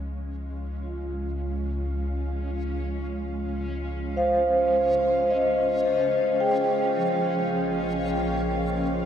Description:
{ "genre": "ambient", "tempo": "54 BPM", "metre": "4/4", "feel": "straight", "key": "Db lydian", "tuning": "A4 = 440 Hz", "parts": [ { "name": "granular cloud pad", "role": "sustained chords", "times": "0.0-9.1 s", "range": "Ab3 to F5", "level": "-33 LUFS", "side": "equal", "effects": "built-in reverb, shimmer reverb" }, { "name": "vibraphone with soft mallets", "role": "arpeggios", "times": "0.0-9.1 s", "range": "F3 to G5", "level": "-24 LUFS", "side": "equal", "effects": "tape echo, shimmer reverb" }, { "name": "deep rumbling drone", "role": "bass", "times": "0.0-9.1 s", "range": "Bb1 to Db2", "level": "-32 LUFS", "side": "left 1 dB", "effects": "built-in reverb, phaser" }, { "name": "analog drone", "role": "drone", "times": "0.0-9.1 s", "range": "Db3 to Db4", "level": "-41 LUFS", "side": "equal", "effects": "none" }, { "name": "backwards swelling texture", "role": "texture", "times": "0.0-9.1 s", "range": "Db4 to Db5", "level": "-40 LUFS", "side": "left 2 dB", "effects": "built-in reverb, shimmer reverb" } ], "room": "wet plate reverb, RT60 2.6 s", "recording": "echo-heavy mix", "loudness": "-23 LUFS", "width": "side -9 dB against mid", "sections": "0.0-9.1 A section", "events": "fade-in on ambient pad 0.0-9.1; fade-in on synth texture 0.0-9.1", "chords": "0.0 Db; 6.4 Bbmadd9" }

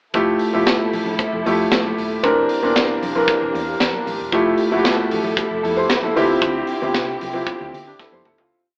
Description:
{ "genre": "disco", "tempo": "115 BPM", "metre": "4/4", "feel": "straight", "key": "F major", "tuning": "A4 = 440 Hz", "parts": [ { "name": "clear grand piano", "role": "accompaniment", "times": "0.1-8.6 s", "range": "E3 to C5", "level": "-21 LUFS", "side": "equal", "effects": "none" }, { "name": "dark studio string section", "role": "sustained chords", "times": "0.1-8.5 s", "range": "D3 to A4", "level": "-29 LUFS", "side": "equal", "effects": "none" }, { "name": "hollow-body short-scale fingered electric bass", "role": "bass", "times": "0.1-8.5 s", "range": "Eb1 to D3", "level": "-38 LUFS", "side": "equal", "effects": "none" }, { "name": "tight funk drum kit", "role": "drums", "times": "0.1-8.5 s", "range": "hi-hat, kick drum, snare drum, toms", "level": "-25 LUFS", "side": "equal", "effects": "none" }, { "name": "congas", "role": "percussion", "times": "0.1-8.4 s", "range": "none", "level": "-36 LUFS", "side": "equal", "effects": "none" } ], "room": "moderate stone room reverb, RT60 1.2 s", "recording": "band playing live in one room, AM radio sound", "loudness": "-19 LUFS", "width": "mono", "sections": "0.1-8.5 verse", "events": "fade-out 6.4-8.5; drum fill 8.0-8.5", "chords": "0.1 Fmaj9; 2.2 C9/E; 4.3 Fmaj9; 6.2 Dm11" }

